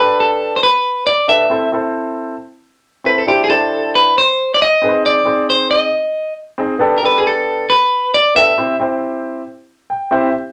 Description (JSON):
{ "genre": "soul", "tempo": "136 BPM", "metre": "4/4", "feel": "straight", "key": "C major", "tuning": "A4 = 442 Hz", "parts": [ { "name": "clean electric guitar", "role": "melody", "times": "0.0-8.8 s", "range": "G4 to E5", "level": "-14 LUFS", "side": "equal", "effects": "none" }, { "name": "warm grand piano", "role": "accompaniment", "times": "0.0-10.3 s", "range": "B3 to G5", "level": "-19 LUFS", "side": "equal", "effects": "none" } ], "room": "wet studio ambience, RT60 0.4 s", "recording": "none", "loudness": "-14 LUFS", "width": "mono", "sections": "0.0-10.3 A section", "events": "grand piano fill 9.7-10.3", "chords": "0.0 Gadd9; 1.5 Am; 3.3 Cadd9; 4.8 Ab; 6.8 Gadd9; 8.6 C", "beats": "0.18 0.62 1.07 | 1.51 1.95 2.39 2.83 | 3.28 3.72 4.16 4.60 | 5.04 5.48 5.92 6.37 | 6.81 7.25 7.69 8.13 | 8.58 9.02 9.46 9.90" }